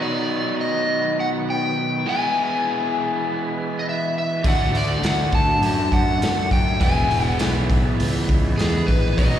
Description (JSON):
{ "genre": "blues rock power trio and southern rock", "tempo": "101 BPM", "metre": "4/4", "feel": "straight", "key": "E mixolydian", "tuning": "A4 = 440 Hz", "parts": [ { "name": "overdriven slide guitar", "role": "melody", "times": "0.0-9.4 s", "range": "G#4 to A5", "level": "-23 LUFS", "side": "left 1 dB", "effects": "slapback echo, tape echo" }, { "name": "overdriven tonewheel organ", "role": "sustained chords", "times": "0.0-9.4 s", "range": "F#3 to B4", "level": "-34 LUFS", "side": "right 4 dB", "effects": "slow rotary speaker, chorus vibrato" }, { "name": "overdriven electric guitar", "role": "riff", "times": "0.0-9.4 s", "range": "B2 to F#4", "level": "-24 LUFS", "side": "equal", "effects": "slapback echo" }, { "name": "fuzz fingered electric bass", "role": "bass", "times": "4.4-9.4 s", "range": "E1 to F#2", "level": "-23 LUFS", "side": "equal", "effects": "overdrive" }, { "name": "raw garage drum kit", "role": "drums", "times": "4.4-9.3 s", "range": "hi-hat, kick drum, snare drum", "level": "-21 LUFS", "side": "equal", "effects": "none" } ], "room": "light reverb", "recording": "live gig heard through the venue's PA, recital hall reverb", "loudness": "-18 LUFS", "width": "side -10 dB against mid", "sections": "0.0-9.4 A section", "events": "none", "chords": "0.0 B; 2.1 E; 4.4 D; 6.8 E", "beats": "0.30 0.89 1.48 | 2.08 2.67 3.26 3.85 | 4.44 5.03 5.62 6.21 | 6.81 7.40 7.99 8.58 | 9.18" }